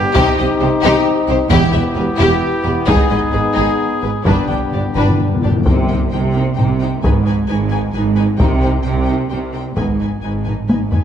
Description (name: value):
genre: cinematic, epic orchestral film score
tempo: 132 BPM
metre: 3/4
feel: straight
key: C harmonic minor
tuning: A4 = 439 Hz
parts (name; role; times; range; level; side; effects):
- mellow French horn section; sustained chords; 0.0-9.9 s; Eb3 to E4; -21 LUFS; left 3 dB; none
- clear trumpet; stabs; 0.0-5.4 s; G4 to Ab4; -22 LUFS; equal; none
- rich symphonic double bass section; bass; 0.0-11.0 s; E1 to C2; -20 LUFS; right 3 dB; none
- rich studio violin section; melody; 0.1-11.0 s; G4 to Ab5; -24 LUFS; left 7 dB; none
- rich symphonic viola section; accompaniment; 0.1-11.0 s; D4 to Ab4; -24 LUFS; right 1 dB; none
- clear symphonic violin section; second line; 0.2-11.0 s; D4 to C5; -26 LUFS; left 4 dB; none
- rich symphonic cello section; bass; 0.2-11.0 s; E2 to C3; -20 LUFS; right 2 dB; none
- taiko ensemble; drums; 0.2-11.0 s; none; -18 LUFS; left 1 dB; none
- timpani; percussion; 4.3-6.3 s; G2 to C3; -20 LUFS; left 2 dB; none
room: moderate scoring stage reverb, RT60 1.5 s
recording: none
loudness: -13 LUFS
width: side -9 dB against mid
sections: 0.0-5.7 A section; 5.7-11.0 B section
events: timpani fill 4.3-5.7; drum fill 10.5-11.0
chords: 0.2 Cm; 1.5 Em; 2.9 Abm; 4.3 G; 5.7 Cm; 7.0 Abm; 8.4 Cm; 9.8 Abm